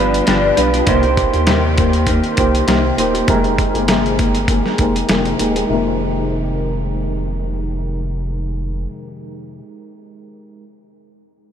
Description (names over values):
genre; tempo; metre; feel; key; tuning
indie pop, bedroom pop; 100 BPM; 4/4; swing 55% on 16ths; F minor; A4 = 440 Hz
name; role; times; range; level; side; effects
nylon-string guitar; accompaniment; 0.0-9.6 s; F2 to Ab4; -19 LUFS; left 5 dB; ensemble chorus, vibrato effect, low-pass filter
soft electric-piano-like synth keys; accompaniment; 0.0-10.6 s; G3 to C5; -21 LUFS; right 5 dB; chorus, tremolo, cassette tape, low-pass filter
warm sub bass; bass; 0.0-8.9 s; Eb1 to Eb2; -21 LUFS; equal; none
dusty soul sampler-style drum kit; drums; 0.1-5.7 s; hi-hat, kick drum, snare drum; -19 LUFS; equal; overdrive
room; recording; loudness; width
moderate huge ambient reverb, RT60 7.5 s; dreamy mix soaked in reverb; -14 LUFS; side -8 dB against mid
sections
0.0-5.7 A section; 5.7-8.1 B section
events
filter sweep 0.0-5.7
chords
0.0 G7; 0.9 Cm7; 3.3 Fm11